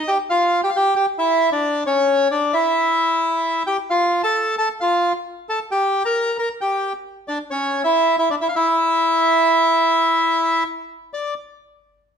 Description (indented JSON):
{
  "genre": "tango",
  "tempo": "133 BPM",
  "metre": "4/4",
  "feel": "rubato",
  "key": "unclear",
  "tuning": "A4 = 440 Hz",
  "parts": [
    { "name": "bandoneon", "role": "solo", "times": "0.0-11.3 s", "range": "C#4 to Bb5", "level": "-17 LUFS", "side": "equal", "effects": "none" }
  ],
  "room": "moderate large studio reverb, RT60 1.2 s",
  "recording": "minimal, uncompressed stereo recording",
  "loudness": "-16 LUFS",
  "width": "side -7 dB against mid",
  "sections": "0.0-11.1 A section; 11.1-12.2 B section",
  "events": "none",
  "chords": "0.3 C#dim; 3.9 F; 5.7 Gm; 7.5 C#m; 9.3 N.C.",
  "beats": "| 0.29 0.74 1.19 1.64 | 2.09 2.54 2.99 3.44 | 3.90 4.35 4.81 5.26 | 5.71 6.16 6.62 7.06 | 7.51 7.96 8.41 8.86 | 9.31 9.76 10.21 10.67 | 11.13"
}